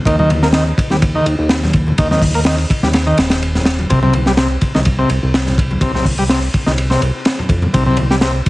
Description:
breakbeat, breaks; 125 BPM; 4/4; swing 53% on 16ths; C minor; A4 = 440 Hz
combo organ; riff; 0.1-8.3 s; C3 to Bb3; -17 LUFS; equal; low-pass filter, ping-pong delay
fat analog bass; bass; 0.1-8.4 s; Eb1 to F2; -17 LUFS; equal; tube saturation
crunchy breakbeat drum kit; drums; 0.1-8.5 s; hi-hat, kick drum, ride cymbal, snare drum; -16 LUFS; equal
congas; percussion; 0.2-8.1 s; -22 LUFS; left 1 dB
moderate studio reverb, RT60 0.6 s; heavily compressed radio sound, vinyl crackle, nothing above 10.6 kHz; -12 LUFS; side -19 dB against mid
0.0-8.5 A section
| 0.06 0.54 1.02 1.50 | 1.98 2.46 2.94 3.42 | 3.90 4.38 4.86 5.34 | 5.82 6.30 6.78 7.26 | 7.74 8.22

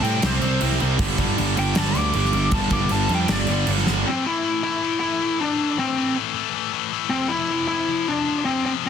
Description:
hard rock; 157 BPM; 4/4; straight; A minor; A4 = 440 Hz
smooth overdriven lead guitar; melody; 0.0-8.9 s; C4 to D6; -24 LUFS; left 2 dB
high-gain distorted guitar; riff; 0.0-4.1 s; G2 to C4; -29 LUFS; right 1 dB; distortion
scooped high-gain guitar; riff; 0.0-8.9 s; F2 to C4; -25 LUFS; left 15 dB; distortion
tight distorted guitar; riff; 0.0-4.1 s; G2 to C4; -27 LUFS; right 17 dB; distortion
fuzz picked electric bass; bass; 0.0-4.0 s; G1 to A2; -23 LUFS; equal; overdrive
gated 80s drum kit; drums; 0.0-4.0 s; crash cymbal, kick drum, snare drum; -26 LUFS; right 1 dB
little or no reverb; dense, heavily limited modern master; -19 LUFS; side -8 dB against mid
0.0-4.1 A section; 4.1-8.9 B section
lead electric guitar solo 0.0-4.1; drum fill 3.9
0.0 C5; 1.0 G5; 4.1 A5; 7.1 F5
0.22 0.61 | 0.99 1.38 1.76 2.15 | 2.53 2.91 3.29 3.68 | 4.06 4.44 4.82 5.21 | 5.59 5.97 6.35 6.74 | 7.12 7.50 7.88 8.26 | 8.64

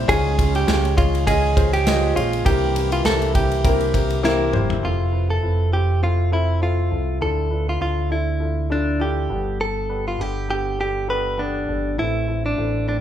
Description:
piano-driven pop; 101 BPM; 4/4; swing 56% on 16ths; F lydian from 4.8 s; A4 = 440 Hz
warm baby grand piano; accompaniment; 0.0-13.0 s; G2 to Eb5; -26 LUFS; left 4 dB
fingered electric bass; bass; 0.0-13.0 s; F1 to D2; -22 LUFS; right 1 dB
direct-recorded clean electric guitar; melody; 0.1-13.0 s; D4 to B4; -23 LUFS; right 1 dB
mellow French horn section; second line; 0.1-4.5 s; Db3 to F4; -30 LUFS; right 5 dB
modern studio drum kit; drums; 0.1-4.8 s; kick drum, ride cymbal, snare drum, toms; -22 LUFS; equal
light reverb; band playing live in one room; -18 LUFS; side -10 dB against mid
0.0-4.8 A section; 4.8-13.0 B section
drum fill 4.2-4.8
0.1 Db; 2.5 C7; 4.8 Fmaj7; 7.2 Dmadd9; 9.3 Gadd9; 12.0 Am
| 0.09 0.68 1.27 1.87 | 2.46 3.06 3.65 4.24 | 4.84 5.43 6.03 6.62 | 7.22 7.81 8.41 9.01 | 9.60 10.20 10.79 11.39 | 11.98 12.58

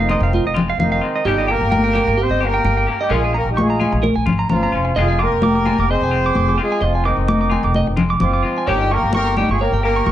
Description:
highlife guitar band; 129 BPM; 4/4; swing 54% on 16ths; F minor; A4 = 436 Hz
warm horn section; melody; 0.0-10.1 s; Eb3 to C5; -20 LUFS; left 1 dB; plate reverb
electric guitar at the edge of break-up; arpeggios; 0.0-10.1 s; F4 to D6; -22 LUFS; right 5 dB; plate reverb, tape echo
upright bass; bass; 0.0-10.1 s; F1 to Bb1; -20 LUFS; equal
clean electric guitar; accompaniment; 0.1-10.0 s; Eb3 to G4; -26 LUFS; left 4 dB; tremolo, plate reverb
congas; percussion; 0.1-10.1 s; -21 LUFS; left 2 dB
light reverb; nothing above 10.5 kHz; -15 LUFS; side -12 dB against mid
0.0-10.1 A section
0.0 Fm7; 1.3 Eb7/G; 3.1 Bbm7; 5.0 Fm7; 8.7 Eb7/G
0.33 0.79 | 1.25 1.72 2.18 2.65 | 3.11 3.57 4.04 4.50 | 4.97 5.43 5.89 6.36 | 6.82 7.28 7.75 8.21 | 8.67 9.14 9.60 10.06

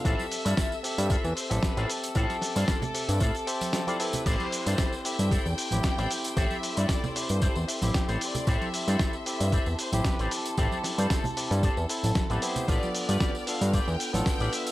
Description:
nu-disco, nu disco; 114 BPM; 4/4; swing 54% on 16ths; A minor; A4 = 439 Hz
bright studio violin section; melody; 0.0-14.7 s; A4 to G5; -36 LUFS; left 1 dB; tape echo
barky tine electric piano; accompaniment; 0.0-14.7 s; B3 to E5; -34 LUFS; equal
electric guitar with an envelope filter; riff; 0.0-14.7 s; E4 to G5; -36 LUFS; left 2 dB; analog chorus
rich studio string section; sustained chords; 0.1-14.7 s; A4 to F6; -42 LUFS; left 2 dB; sidechain pumping
fat analog bass; bass; 0.1-14.5 s; A1 to A2; -27 LUFS; equal
dusty soul sampler-style drum kit; drums; 0.1-14.7 s; cabasa, crash cymbal, hi-hat, snare drum; -32 LUFS; equal
electronic kick drum; drums; 0.1-14.4 s; -28 LUFS; equal
tambourine and congas; percussion; 0.1-14.7 s; -37 LUFS; right 2 dB
little or no reverb; dry, gritty hardware recording, transformer saturation; -25 LUFS; side -16 dB against mid
0.0-14.7 A section
clean electric guitar fill 6.9-8.5
0.1 Fmaj7/A; 4.3 Am7; 12.7 G7/A
| 0.05 0.58 1.10 1.63 | 2.16 2.68 3.21 3.74 | 4.26 4.79 5.32 5.84 | 6.37 6.89 7.42 7.95 | 8.47 9.00 9.53 10.05 | 10.58 11.11 11.63 12.16 | 12.68 13.21 13.74 14.26

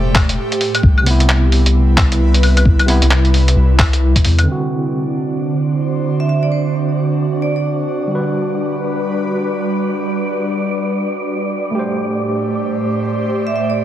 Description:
future garage; 132 BPM; 4/4; swing 61% on 16ths; A4 = 440 Hz
airy breathy pad; sustained chords; 0.0-13.8 s; A2 to C5; -20 LUFS; right 1 dB; chorus, sidechain pumping
soft dub sub bass; bass; 0.0-4.5 s; E1 to E2; -13 LUFS; equal; sidechain pumping
electronic kick drum; drums; 0.1-4.2 s; -13 LUFS; equal
lo-fi sampler-style drum kit; drums; 0.2-4.5 s; claves, handclaps, hi-hat; -18 LUFS; left 1 dB; low-pass filter on perc, low-pass filter on hats, low-pass filter on snare
overdriven tine electric piano; accompaniment; 1.0-13.8 s; C3 to C5; -21 LUFS; right 2 dB; fast tremolo, sidechain pumping, tape echo
wind-like tuned noise texture; texture; 5.1-13.8 s; D5; -26 LUFS; equal; built-in reverb
vibraphone with medium hard mallets; melody; 6.2-7.6, 13.5-13.8 s; C5 to E5; -24 LUFS; right 5 dB; dub echo
light reverb, digital ambience; heavily compressed radio sound, multiband compression; -13 LUFS; side -12 dB against mid
0.0-4.5 A section; 4.5-13.8 B section
0.0 Am7; 0.8 Cmaj7; 4.5 D7; 8.1 Gmaj7; 11.7 Am7
0.38 | 0.84 1.29 1.75 2.20 | 2.66 3.11 3.57 4.02 | 4.47 4.93 5.38 5.84 | 6.29 6.75 7.20 7.66 | 8.11 8.57 9.02 9.47 | 9.93 10.38 10.84 11.29 | 11.75 12.20 12.66 13.11 | 13.57

